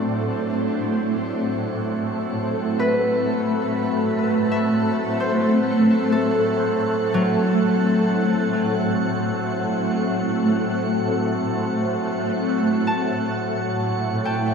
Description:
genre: ambient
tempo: free time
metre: none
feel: none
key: A dorian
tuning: A4 = 440 Hz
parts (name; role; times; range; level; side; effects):
- shimmering ambient pad; sustained chords; 0.0-14.5 s; A2 to E4; -21 LUFS; equal; chorus, built-in reverb, phaser
- drifting glass-harmonics texture; texture; 0.0-14.5 s; F#3 to F#5; -28 LUFS; left 1 dB; chorus, built-in reverb
- concert harp; arpeggios; 2.8-14.5 s; F#3 to A5; -24 LUFS; left 1 dB; ping-pong delay
room: wet shimmer reverb, RT60 6.7 s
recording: none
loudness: -19 LUFS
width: side -6 dB against mid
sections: 0.0-14.5 A section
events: fade-in on synth texture 0.0-14.5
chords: 0.0 Amadd9; 12.3 C/A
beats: free time

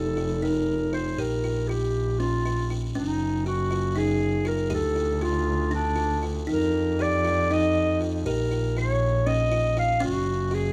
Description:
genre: contemporary instrumental, chamber music in an uneven meter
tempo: 238 BPM (eighths)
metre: 7/8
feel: straight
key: unclear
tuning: A4 = 440 Hz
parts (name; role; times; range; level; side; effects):
- mellow clarinet; melody; 0.0-10.7 s; D4 to F5; -29 LUFS; equal; none
- buzzing kalimba; arpeggios; 0.0-10.7 s; Db4 to G4; -32 LUFS; equal; none
- clear double bass; bass; 0.0-10.7 s; F1 to F2; -29 LUFS; equal; none
room: light reverb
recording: close, detailed microphones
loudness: -25 LUFS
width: mono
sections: 0.0-10.7 A section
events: none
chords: 0.0 F7sus4; 1.2 Bb5; 3.0 Gbsus2; 4.7 Dm; 6.5 F7sus4; 8.3 Bbm; 10.0 Gbsus2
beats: 0.17 0.43 0.68 0.94 | 1.19 1.44 1.69 1.94 2.20 2.45 2.70 | 2.95 3.20 3.45 3.70 3.95 4.20 4.45 | 4.71 4.96 5.21 5.46 5.71 5.97 6.23 | 6.48 6.74 6.99 7.25 7.50 7.75 8.01 | 8.26 8.51 8.76 9.01 9.27 9.52 9.77 | 10.01 10.27 10.52

